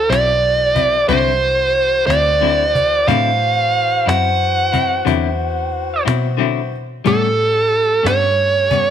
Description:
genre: slow blues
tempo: 60 BPM (dotted quarters)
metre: 12/8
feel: straight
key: D mixolydian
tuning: A4 = 441 Hz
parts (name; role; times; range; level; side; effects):
- dark smooth lead guitar; melody; 0.0-8.9 s; A4 to F#5; -15 LUFS; right 2 dB; overdrive
- warm saxophone section; sustained chords; 0.0-8.9 s; E3 to C5; -26 LUFS; left 11 dB; none
- vintage muted fingered electric bass; bass; 0.0-8.9 s; B1 to B2; -22 LUFS; equal; none
- clean electric guitar; accompaniment; 0.1-8.9 s; A2 to E4; -21 LUFS; left 13 dB; tremolo
- cajon; drums; 0.1-8.9 s; none; -24 LUFS; equal; none
room: light reverb, small room ambience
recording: 1960s-style stereo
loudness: -13 LUFS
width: side -9 dB against mid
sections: 0.0-8.9 A section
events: none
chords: 0.0 D9; 7.1 A9

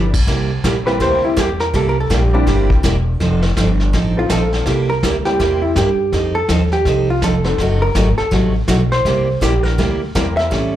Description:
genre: country, western swing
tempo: 164 BPM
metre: 4/4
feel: swing 63% on 8ths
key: C mixolydian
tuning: A4 = 440 Hz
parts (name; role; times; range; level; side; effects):
- honky-tonk upright piano; accompaniment; 0.0-7.6, 10.2-10.5 s; F3 to Bb4; -24 LUFS; left 3 dB; slapback echo
- picked steel-string acoustic guitar; accompaniment; 0.0-10.7 s; C3 to A4; -20 LUFS; right 3 dB; slapback echo
- upright bass; bass; 0.0-10.8 s; E1 to A2; -18 LUFS; equal; none
- vintage brush drum kit; drums; 0.1-10.8 s; brushed snare drum, crash cymbal, hi-hat, kick drum, snare drum; -22 LUFS; left 1 dB; none
- vintage hollow-body jazz guitar; second line; 0.9-10.8 s; D4 to E5; -19 LUFS; equal; slapback echo
room: light reverb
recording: live gig heard through the venue's PA, club reverb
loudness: -14 LUFS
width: side -12 dB against mid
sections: 0.3-10.8 A section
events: hollow-body jazz guitar solo 0.3-10.8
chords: 0.3 C7; 3.2 F7; 4.7 C7; 6.1 F7; 7.6 F#dim7; 9.1 C7

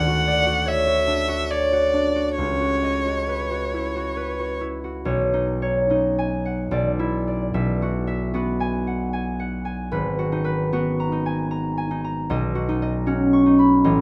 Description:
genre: classical, impressionist duo for violin and harp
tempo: 65-79 BPM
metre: 3/4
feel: rubato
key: unclear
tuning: A4 = 440 Hz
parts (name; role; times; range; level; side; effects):
- rich violin; melody; 0.0-4.6 s; C#5 to F#5; -26 LUFS; equal; none
- concert harp; accompaniment; 0.0-14.0 s; G#1 to C#6; -23 LUFS; equal; none
room: light reverb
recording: none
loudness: -22 LUFS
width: mono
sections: 0.0-5.1 A section; 5.1-14.0 B section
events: none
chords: 0.0 Dmaj7; 2.4 C#m11; 5.1 B69; 6.7 Dadd9/B; 7.6 Eadd9/B; 9.9 G#m9; 12.3 Badd9

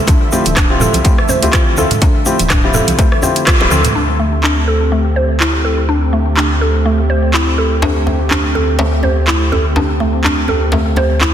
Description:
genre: afro house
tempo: 124 BPM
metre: 4/4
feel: swing 56% on 16ths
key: unclear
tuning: A4 = 439 Hz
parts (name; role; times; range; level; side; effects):
- warm analog pad; sustained chords; 0.0-11.3 s; D3 to E5; -21 LUFS; right 1 dB; chorus, sidechain pumping
- mallet-like synth pluck; arpeggios; 0.1-11.3 s; A3 to C5; -18 LUFS; right 1 dB; chorus, sidechain pumping, ping-pong delay
- dark detuned saw bass; bass; 0.1-11.3 s; D1 to D2; -16 LUFS; equal; sidechain pumping
- afro-pop drum kit; drums; 0.1-11.3 s; handclaps, hi-hat, rim click, toms; -17 LUFS; equal; none
- electronic kick drum; drums; 0.1-3.6 s; none; -13 LUFS; equal; none
- djembe; percussion; 0.1-3.8, 7.8-11.3 s; none; -21 LUFS; left 1 dB; none
- tube shaker; percussion; 0.1-3.9 s; none; -25 LUFS; equal; none
- felt-muted upright piano; stabs; 0.3-3.8 s; C4 to A4; -19 LUFS; left 4 dB; sidechain pumping, ping-pong delay
- congas; percussion; 0.4-3.9 s; none; -23 LUFS; right 4 dB; none
room: moderate lush hall reverb, RT60 1.9 s, studio reverb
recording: dense, heavily limited modern master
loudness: -11 LUFS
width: side -9 dB against mid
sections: 0.0-4.0 A section; 4.0-11.3 B section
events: band accent 3.5; drum fill 3.6-4.0; filter sweep on synth pluck 4.0-11.3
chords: 0.0 Dm11; 4.0 Am7/D

